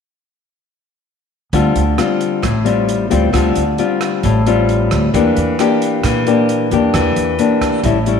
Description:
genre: bossa nova.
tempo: 133 BPM.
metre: 4/4.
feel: straight.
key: D minor.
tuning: A4 = 440 Hz.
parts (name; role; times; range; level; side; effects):
nylon-string guitar; accompaniment; 1.5-8.2 s; A2 to G4; -14 LUFS; left 4 dB; none.
upright bass; bass; 1.5-8.2 s; A1 to Bb2; -18 LUFS; right 2 dB; none.
open jazz drum kit; drums; 1.5-8.2 s; hi-hat, kick drum, rim click; -24 LUFS; right 6 dB; none.
room: moderate echo chamber reverb, RT60 1.6 s, small room ambience.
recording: 1960s-style stereo.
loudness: -13 LUFS.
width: side -6 dB against mid.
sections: 1.5-8.2 A section.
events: none.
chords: 1.5 Dm7; 5.1 Em7b5.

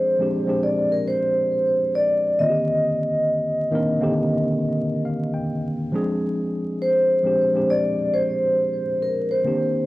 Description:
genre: hip hop.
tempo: 68 BPM.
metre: 4/4.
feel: swing 65% on 16ths.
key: unclear.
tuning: A4 = 442 Hz.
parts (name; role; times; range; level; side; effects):
vibraphone with soft mallets; melody; 0.0-9.9 s; Bb4 to Eb5; -20 LUFS; equal; cassette tape, tape echo.
tine electric piano; accompaniment; 0.0-9.9 s; D3 to G5; -24 LUFS; equal; medium stereo tremolo, cassette tape.
room: wet spring reverb, RT60 2.6 s.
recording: home recording on cassette, vinyl crackle.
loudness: -19 LUFS.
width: side -18 dB against mid.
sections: 0.0-9.9 A section.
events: none.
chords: 0.0 Dm7b5; 2.4 Cm7; 5.9 Dm7b5.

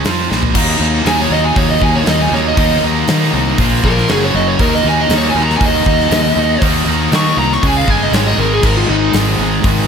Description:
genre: hard rock.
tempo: 119 BPM.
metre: 4/4.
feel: straight.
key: unclear.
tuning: A4 = 440 Hz.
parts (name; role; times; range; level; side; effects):
overdriven electric guitar; riff; 0.0-9.9 s; Gb2 to F4; -20 LUFS; right 13 dB; spring reverb.
sludgy distorted guitar; riff; 0.0-9.9 s; Gb2 to F4; -19 LUFS; left 12 dB; overdrive.
fuzz fingered electric bass; bass; 0.0-9.8 s; Gb1 to Eb3; -18 LUFS; equal; overdrive.
gated 80s drum kit; drums; 0.0-9.8 s; crash cymbal, hi-hat, kick drum, snare drum, toms; -18 LUFS; equal; none.
distorted electric guitar; riff; 0.5-9.9 s; Ab2 to Db5; -20 LUFS; equal; overdrive.
biting lead guitar; melody; 1.1-9.1 s; Eb4 to Db6; -16 LUFS; right 1 dB; overdrive, slapback echo.
room: light reverb, small room ambience.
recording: none.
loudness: -11 LUFS.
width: side -6 dB against mid.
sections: 0.6-9.9 A section.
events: drum fill 0.3; lead electric guitar solo 0.6-9.9.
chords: 0.0 Bb5; 0.6 Ebm; 3.6 Bb5; 4.1 Gb5; 4.6 Ebm; 7.6 Db5; 8.1 Ab5; 8.6 Ab.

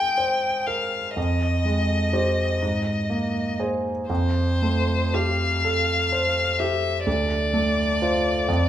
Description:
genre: classical, impressionist duo for violin and grand piano.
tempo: 38-43 BPM (dotted quarters).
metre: 6/8.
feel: rubato.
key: unclear.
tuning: A4 = 439 Hz.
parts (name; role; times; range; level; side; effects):
rich violin; melody; 0.0-8.7 s; C5 to G5; -24 LUFS; left 3 dB; none.
clear concert grand piano; accompaniment; 0.0-8.7 s; D2 to C5; -23 LUFS; right 1 dB; none.
room: moderate recital hall reverb, RT60 1.6 s.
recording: minimal, uncompressed stereo recording.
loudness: -21 LUFS.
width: side -11 dB against mid.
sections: 0.0-8.7 A section.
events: none.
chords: 0.0 Abadd9; 1.2 Fm9; 2.6 Abadd9; 4.1 Fadd9; 7.1 Dm7.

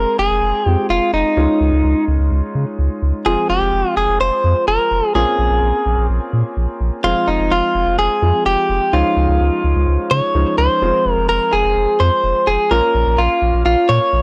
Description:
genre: synth-pop.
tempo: 127 BPM.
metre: 4/4.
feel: straight.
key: F minor.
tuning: A4 = 440 Hz.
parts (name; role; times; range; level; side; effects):
direct-recorded clean electric guitar; melody; 0.0-14.2 s; Eb4 to Db5; -18 LUFS; equal; analog delay.
clear concert grand piano; accompaniment; 0.0-14.2 s; F3 to Ab4; -25 LUFS; equal; none.
round analog bass; bass; 0.0-14.2 s; F1 to Db3; -20 LUFS; equal; none.
room: light reverb.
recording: dry, gritty hardware recording.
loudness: -16 LUFS.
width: mono.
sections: 0.0-10.8 A section; 10.8-14.2 B section.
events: none.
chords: 0.0 Fm; 1.4 Dbadd9; 3.3 Fm; 5.2 Bbmadd9; 7.0 Fm; 8.9 Dbadd9; 10.8 Fm; 12.7 Bbm.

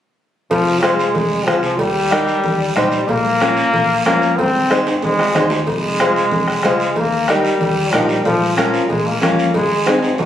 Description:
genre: latin, cumbia.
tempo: 186 BPM.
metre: 4/4.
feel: straight.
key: F minor.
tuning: A4 = 437 Hz.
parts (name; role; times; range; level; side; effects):
bright trombone; second line; 0.5-10.3 s; F3 to C4; -17 LUFS; left 1 dB; none.
hollow-body short-scale fingered electric bass; bass; 0.5-10.3 s; F1 to F2; -25 LUFS; equal; none.
bombo; percussion; 0.5-10.3 s; none; -25 LUFS; left 1 dB; none.
cowbell and timbales; percussion; 0.5-10.3 s; none; -23 LUFS; right 2 dB; none.
guiro; percussion; 0.5-10.3 s; none; -27 LUFS; right 2 dB; none.
bright upright piano; accompaniment; 0.8-10.1 s; C4 to C5; -18 LUFS; left 1 dB; none.
congas; percussion; 0.8-10.3 s; none; -26 LUFS; right 1 dB; none.
room: moderate studio reverb, RT60 0.8 s.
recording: recorded on a phone in the room, studio reverb.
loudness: -14 LUFS.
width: side -10 dB against mid.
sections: 0.5-10.3 A section.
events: drum fill 4.9-5.7, 9.9-10.3.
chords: 0.5 Fm; 1.8 Eb; 3.1 Bbm; 4.4 Ab; 5.7 Fm; 7.0 Eb; 8.3 Bbm; 9.6 Ab.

